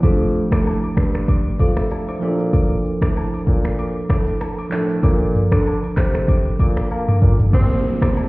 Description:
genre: afrobeats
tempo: 96 BPM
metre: 4/4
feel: swing 55% on 16ths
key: unclear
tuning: A4 = 439 Hz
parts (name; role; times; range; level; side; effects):
- bell-like tine electric piano; accompaniment; 0.0-8.3 s; F3 to F5; -22 LUFS; right 2 dB; fast stereo tremolo
- warm bassoon; bass; 0.0-8.3 s; C2 to Bb3; -24 LUFS; left 1 dB; none
- afro-pop drum kit; drums; 0.0-8.3 s; finger snaps, handclaps, hi-hat, kick drum, rim click, shaker, toms; -17 LUFS; equal; none
- agogo bells and woodblock; percussion; 0.0-8.3 s; none; -35 LUFS; left 2 dB; none
- impact and downlifter; sound effects; 0.0, 7.5-8.3 s; none; -29 LUFS; equal; none
- breathy tenor saxophone; melody; 7.5-8.1 s; C4; -28 LUFS; equal; digital delay
room: digital ambience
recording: heard muffled through a wall, stone room reverb, EQ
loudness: -16 LUFS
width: side -22 dB against mid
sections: 0.0-7.5 A section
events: none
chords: 0.0 F69; 2.2 Bbmaj7; 7.5 C7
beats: | 0.03 0.66 1.28 1.91 | 2.53 3.16 3.78 4.41 | 5.03 5.66 6.28 6.91 | 7.53 8.16

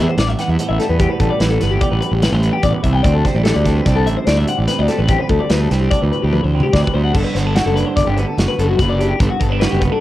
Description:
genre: math rock and midwest emo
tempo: 146 BPM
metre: 5/4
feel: straight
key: G major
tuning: A4 = 440 Hz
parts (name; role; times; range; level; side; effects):
- semi-hollow electric guitar; accompaniment; 0.0-10.0 s; D2 to G4; -22 LUFS; right 6 dB; wide subtle chorus, cassette tape
- twelve-string electric guitar; arpeggios; 0.0-10.0 s; F#4 to G5; -20 LUFS; left 6 dB; wide subtle chorus, cassette tape
- fuzz fingered electric bass; bass; 0.0-9.9 s; F#1 to E2; -17 LUFS; equal; overdrive
- modern studio drum kit; drums; 0.2-9.9 s; crash cymbal, hi-hat, kick drum, snare drum, toms; -20 LUFS; equal; cassette tape
room: light reverb, small room ambience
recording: home recording on cassette, faint mains hum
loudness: -13 LUFS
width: side -14 dB against mid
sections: 0.0-7.1 A section; 7.1-10.0 B section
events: drum fill 6.3-7.1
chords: 0.0 Am9; 3.0 D7sus4; 7.1 Gmaj9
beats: 0.18 0.59 | 0.99 1.40 1.81 2.22 2.63 | 3.04 3.45 3.86 4.27 4.68 | 5.09 5.50 5.92 6.33 6.74 | 7.15 7.56 7.97 8.38 8.79 | 9.20 9.61

